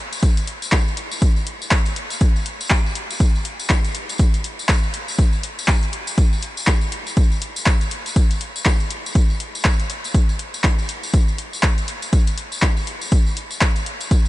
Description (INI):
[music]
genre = house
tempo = 121 BPM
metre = 4/4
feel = swing 59% on 16ths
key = none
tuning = none
[part]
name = punchy analog drum machine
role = drums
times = 0.1-14.2 s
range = handclaps, hi-hat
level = -24 LUFS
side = left 1 dB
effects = overdrive
[part]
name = tambourine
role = percussion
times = 0.1-14.3 s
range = none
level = -31 LUFS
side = left 3 dB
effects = none
[part]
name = electronic kick drum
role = drums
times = 0.2-14.2 s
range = none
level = -16 LUFS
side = equal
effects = overdrive
[sound]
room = light reverb, digital ambience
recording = nothing above 10.4 kHz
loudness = -17 LUFS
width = side -17 dB against mid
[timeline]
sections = 0.0-14.3 A section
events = none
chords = none